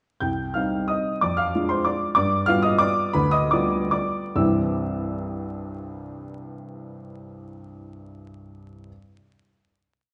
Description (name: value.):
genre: classical, piano waltz.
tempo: 126-194 BPM.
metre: 3/4.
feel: rubato.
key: unclear.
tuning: A4 = 440 Hz.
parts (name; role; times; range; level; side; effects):
clear upright piano; solo; 0.2-8.9 s; C2 to G6; -24 LUFS; equal; none.
room: wet recital hall reverb, RT60 1.5 s.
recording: vinyl crackle, nothing above 10.4 kHz.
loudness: -23 LUFS.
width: mono.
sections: 0.2-4.4 A section; 4.4-6.8 final chord.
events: slowing down 1.7-4.4.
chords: 0.2 Cm; 1.2 Ddim/F; 2.2 G7; 4.4 C.